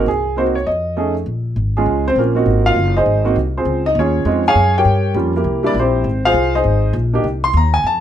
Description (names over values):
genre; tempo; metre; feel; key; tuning
jazz piano trio; 201 BPM; 4/4; swing 62% on 8ths; Bb minor; A4 = 440 Hz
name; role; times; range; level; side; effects
warm concert grand piano; melody; 0.0-8.0 s; G3 to C6; -15 LUFS; right 1 dB; none
upright bass; bass; 0.0-8.0 s; Gb1 to G2; -18 LUFS; left 1 dB; none
room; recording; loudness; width
light reverb; none; -14 LUFS; side -10 dB against mid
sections
0.0-1.3 A section; 1.3-8.0 B section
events
grand piano solo 1.3-8.0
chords
0.1 Cm7b5; 0.7 F7alt; 1.3 Bbm7; 2.5 Ab7; 3.7 Dbmaj7; 4.9 Gm7b5; 5.5 C7; 6.1 Fm7; 7.2 Cm